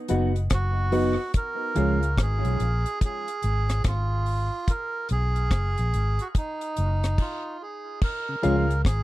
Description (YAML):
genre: dub reggae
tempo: 72 BPM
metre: 4/4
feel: swing 63% on 16ths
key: Db mixolydian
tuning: A4 = 439 Hz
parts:
  - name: mellow electric guitar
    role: accompaniment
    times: 0.1-2.0, 8.4-8.7 s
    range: F3 to Gb4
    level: -29 LUFS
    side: right 3 dB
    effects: tape echo
  - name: dark upright piano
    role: stabs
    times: 0.1-2.0, 8.4-8.7 s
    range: F4 to Gb5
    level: -31 LUFS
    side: left 4 dB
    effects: tape echo
  - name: vintage muted fingered electric bass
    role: bass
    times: 0.1-9.0 s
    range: Gb1 to Db2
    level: -24 LUFS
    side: equal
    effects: none
  - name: deep reggae drum kit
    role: drums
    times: 0.1-9.0 s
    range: crash cymbal, hi-hat, kick drum, rim click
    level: -26 LUFS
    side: equal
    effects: none
  - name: melodica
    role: melody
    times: 0.5-9.0 s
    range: Eb4 to Bb4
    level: -30 LUFS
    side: right 3 dB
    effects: tape echo
  - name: mellow tonewheel organ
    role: accompaniment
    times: 8.3-8.6 s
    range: Db3 to F4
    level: -29 LUFS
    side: left 3 dB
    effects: none
room: little or no reverb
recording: dry, close 1970s-style studio recording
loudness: -23 LUFS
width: side -16 dB against mid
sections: 0.0-8.0 A section; 8.0-9.0 B section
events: stop 7.2-8.0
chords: 0.0 Cb; 1.3 Db; 4.7 Cb; 8.0 Db